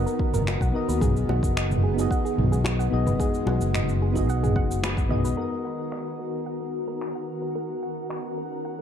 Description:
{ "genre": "sunset chillout", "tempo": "110 BPM", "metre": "4/4", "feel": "straight", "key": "B major", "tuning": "A4 = 440 Hz", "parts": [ { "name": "soft electric-piano-like synth keys", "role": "accompaniment", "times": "0.0-8.8 s", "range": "B3 to D#5", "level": "-31 LUFS", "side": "moving between left 5 dB and right 8 dB", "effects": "chorus, auto-pan, ping-pong delay" }, { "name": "shimmering ambient pad", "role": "sustained chords", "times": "0.0-8.8 s", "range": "D#3 to A#4", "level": "-31 LUFS", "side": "left 2 dB", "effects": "chorus, built-in reverb" }, { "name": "soft round pluck", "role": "arpeggios", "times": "0.0-8.8 s", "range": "G#4 to B5", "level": "-34 LUFS", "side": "right 2 dB", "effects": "chorus, ping-pong delay" }, { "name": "fingered electric bass", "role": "bass", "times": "0.0-5.3 s", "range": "F#1 to D#2", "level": "-25 LUFS", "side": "equal", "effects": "none" }, { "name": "deep house drum kit", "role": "drums", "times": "0.1-8.2 s", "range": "cabasa, finger snaps, toms", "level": "-29 LUFS", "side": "equal", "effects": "overdrive, low-pass filter on perc, low-pass filter on snare, low-pass filter on toms, low-pass filter on room" }, { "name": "electronic kick drum", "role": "drums", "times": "0.2-5.1 s", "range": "none", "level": "-26 LUFS", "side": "equal", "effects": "overdrive" }, { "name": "bongos", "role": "percussion", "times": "0.5-4.9 s", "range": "none", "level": "-34 LUFS", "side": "left 2 dB", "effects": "none" } ], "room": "light reverb", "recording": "dark, warm production", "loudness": "-23 LUFS", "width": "side -9 dB against mid", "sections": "0.0-5.4 A section; 5.4-8.8 B section", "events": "band accent 4.8; filter sweep on ambient pad 5.4-8.8", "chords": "0.0 Bmaj7; 1.0 G#m7; 5.4 Bmaj7", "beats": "0.47 | 1.02 1.56 2.11 2.65 | 3.20 3.74 4.29 4.83 | 5.38 5.93 6.47 7.02 | 7.56 8.11 8.65" }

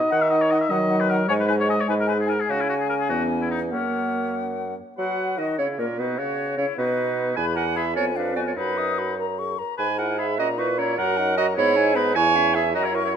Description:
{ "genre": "quick classical-period movement for wind quintet", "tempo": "100 BPM (dotted quarters)", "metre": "6/8", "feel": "straight", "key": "B major", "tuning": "A4 = 445 Hz", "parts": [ { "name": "warm oboe", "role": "second line", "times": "0.0-13.1 s", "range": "C#4 to F#5", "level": "-28 LUFS", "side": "left 4 dB", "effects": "none" }, { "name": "mellow French horn", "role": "accompaniment", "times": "0.0-13.2 s", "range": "F#3 to A#4", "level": "-28 LUFS", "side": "equal", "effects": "none" }, { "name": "concert flute", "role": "melody", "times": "0.1-13.2 s", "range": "A#4 to D#6", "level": "-29 LUFS", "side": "left 11 dB", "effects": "none" }, { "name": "clear clarinet", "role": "accompaniment", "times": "0.1-13.1 s", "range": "A#3 to G#5", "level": "-26 LUFS", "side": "right 7 dB", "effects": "none" }, { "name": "mellow bassoon", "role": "bass", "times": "0.1-13.2 s", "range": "E2 to F#3", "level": "-25 LUFS", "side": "right 2 dB", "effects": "none" } ], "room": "moderate recital hall reverb, RT60 1.6 s", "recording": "none", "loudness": "-20 LUFS", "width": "side -8 dB against mid", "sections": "0.0-5.0 A section; 5.0-13.2 B section", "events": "none", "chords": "0.1 D#m; 1.3 G#5; 2.5 C#m; 3.7 F#; 5.0 B; 6.2 F#5/C#; 6.8 B; 7.4 E; 8.0 Fdim7; 8.6 B/F#; 9.2 F#; 9.8 E/G#; 10.4 A#dim; 11.0 D#m/F#; 11.6 G#m; 12.2 C#m/E", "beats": "| 0.12 0.71 | 1.30 1.89 | 2.49 3.10 | 3.72 4.35 | 4.98 5.59 | 6.18 6.78 | 7.37 7.96 | 8.56 9.18 | 9.79 10.39 | 10.98 11.57 | 12.16 12.75" }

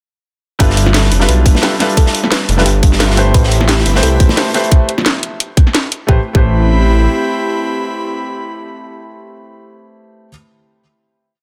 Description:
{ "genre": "liquid drum and bass", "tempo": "175 BPM", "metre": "4/4", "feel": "swing 54% on 16ths", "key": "A minor", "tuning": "A4 = 441 Hz", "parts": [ { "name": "felt-muted upright piano", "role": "accompaniment", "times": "0.6-10.3 s", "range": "G3 to C5", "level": "-21 LUFS", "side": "equal", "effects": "tape echo" }, { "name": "thumb-piano-like synth pluck", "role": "arpeggios", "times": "0.6-6.4 s", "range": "G4 to B4", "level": "-27 LUFS", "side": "equal", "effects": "none" }, { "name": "dark detuned saw bass", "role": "bass", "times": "0.6-7.1 s", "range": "F1 to C2", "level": "-15 LUFS", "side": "equal", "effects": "none" }, { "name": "crunchy breakbeat drum kit", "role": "drums", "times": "0.6-4.7 s", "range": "hi-hat, snare drum", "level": "-22 LUFS", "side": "equal", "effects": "high-pass filter on hats, high-pass filter on snare, high-pass filter on room" }, { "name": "drum and bass drum kit", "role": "drums", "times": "0.6-6.0 s", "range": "hi-hat, snare drum", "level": "-19 LUFS", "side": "equal", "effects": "none" }, { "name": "electronic kick drum", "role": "drums", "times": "0.6-6.4 s", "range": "none", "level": "-12 LUFS", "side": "equal", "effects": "none" }, { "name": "bongos", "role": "percussion", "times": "0.9-5.0 s", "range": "none", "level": "-25 LUFS", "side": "equal", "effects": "none" }, { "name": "airy breathy pad", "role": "sustained chords", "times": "3.3-9.6 s", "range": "C4 to B5", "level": "-23 LUFS", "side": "equal", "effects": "chorus" } ], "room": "small room ambience", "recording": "dense, heavily limited modern master", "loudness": "-12 LUFS", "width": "mono", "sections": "0.6-6.1 drop; 6.1-8.8 final chord", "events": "drop 0.6-6.1", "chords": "0.6 G13; 3.3 Am9", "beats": "| 0.60 0.94 1.29 1.63 | 1.97 2.31 2.66 3.00 | 3.34 3.69 4.03 4.37 | 4.71 5.06 5.40 5.74 | 6.09 6.43 6.77 7.12 | 7.46 7.80 8.14 8.49" }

